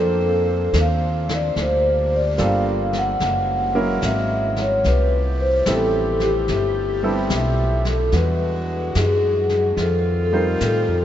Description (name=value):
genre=jazz ballad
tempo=73 BPM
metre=4/4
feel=swing 66% on 8ths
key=unclear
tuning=A4 = 440 Hz
part: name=vibraphone with soft mallets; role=melody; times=0.0-11.0 s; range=G4 to F#5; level=-21 LUFS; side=left 1 dB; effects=none
part: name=warm baby grand piano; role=accompaniment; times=0.0-11.0 s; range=F#3 to C5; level=-26 LUFS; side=right 1 dB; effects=none
part: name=mellow saxophone section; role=sustained chords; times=0.0-11.0 s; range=Eb3 to C5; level=-29 LUFS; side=right 1 dB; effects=none
part: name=upright bass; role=bass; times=0.0-11.0 s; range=F#1 to A2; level=-22 LUFS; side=equal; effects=none
part: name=vintage brush drum kit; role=drums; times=0.7-11.0 s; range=brushed snare drum, hi-hat, snare drum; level=-31 LUFS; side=left 1 dB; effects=none
room=moderate cathedral reverb, RT60 5.5 s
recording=in a vast, echoing space, nothing above 7.7 kHz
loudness=-17 LUFS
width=side -11 dB against mid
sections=0.0-11.0 A section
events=none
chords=0.0 Bbmaj9; 1.6 Gm7; 3.2 F#9; 4.8 Fmaj9#11; 8.1 E9; 9.8 F7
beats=0.74 | 1.56 2.38 3.21 4.03 | 4.85 5.67 6.49 7.31 | 8.13 8.95 9.78 10.61